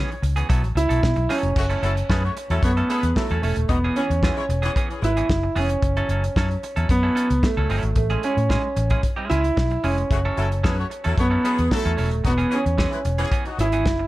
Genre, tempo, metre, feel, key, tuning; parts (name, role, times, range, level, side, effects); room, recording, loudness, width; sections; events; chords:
disco; 112 BPM; 4/4; straight; F# minor; A4 = 441 Hz
warm concert grand piano; melody; 0.0-14.1 s; A3 to C#5; -24 LUFS; right 2 dB
semi-hollow electric guitar; accompaniment; 0.0-14.0 s; E3 to A4; -30 LUFS; right 3 dB
vintage muted fingered electric bass; bass; 0.0-14.0 s; D#1 to B2; -22 LUFS; equal
warm soul drum kit; drums; 0.1-14.0 s; crash cymbal, hi-hat, kick drum, snare drum; -24 LUFS; equal
clear horn section; stabs; 1.6-5.1, 10.1-13.7 s; C#3 to C#5; -30 LUFS; left 3 dB
studio reverb; dark, warm production; -19 LUFS; side -17 dB against mid
0.0-1.6 A section; 1.6-14.1 B section
0.5 B7sus4; 1.6 F#m7; 3.7 E6; 5.8 F#m7; 8.0 Amaj7; 10.1 F#m7; 12.2 E6